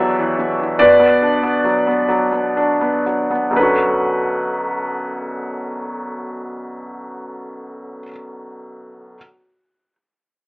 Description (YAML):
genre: classical, lyrical solo piano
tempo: 38-51 BPM (dotted quarters)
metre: 6/8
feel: rubato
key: B minor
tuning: A4 = 440 Hz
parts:
  - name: felt-muted upright piano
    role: solo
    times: 0.0-9.2 s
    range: B1 to E5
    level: -16 LUFS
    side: equal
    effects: none
room: light reverb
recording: telephone sound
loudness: -15 LUFS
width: side -33 dB against mid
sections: 0.0-3.6 A section; 3.6-6.7 B section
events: slowing down 0.0-3.6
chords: 0.0 Esus2; 0.8 Bm; 3.6 Bmadd9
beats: | 0.79 2.09 | 3.57 5.12